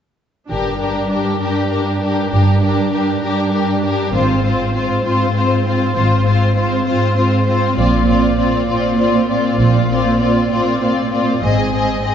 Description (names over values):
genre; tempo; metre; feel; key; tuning
cinematic; 66 BPM (dotted quarters); 6/8; straight; G phrygian; A4 = 440 Hz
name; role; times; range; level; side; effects
warm symphonic violin section; melody; 0.5-12.1 s; Bb4 to Eb5; -23 LUFS; left 4 dB; none
warm symphonic violin section; second line; 0.5-12.1 s; F4 to Ab4; -21 LUFS; left 3 dB; none
warm symphonic viola section; accompaniment; 0.5-12.1 s; C4 to D4; -20 LUFS; equal; none
dark symphonic cello section; bass; 0.5-12.1 s; G2 to Bb2; -18 LUFS; right 2 dB; none
rich symphonic double bass section; bass; 0.5-12.0 s; G1 to Bb1; -20 LUFS; right 1 dB; none
room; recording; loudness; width
wet scoring stage reverb, RT60 1.9 s; heard from further back in the room, nothing above 7.8 kHz; -13 LUFS; side -8 dB against mid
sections
0.5-12.1 A section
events
build-up 0.5-12.1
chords
0.5 Gm; 4.1 Fm/Ab; 7.8 Bbadd9; 11.4 Ab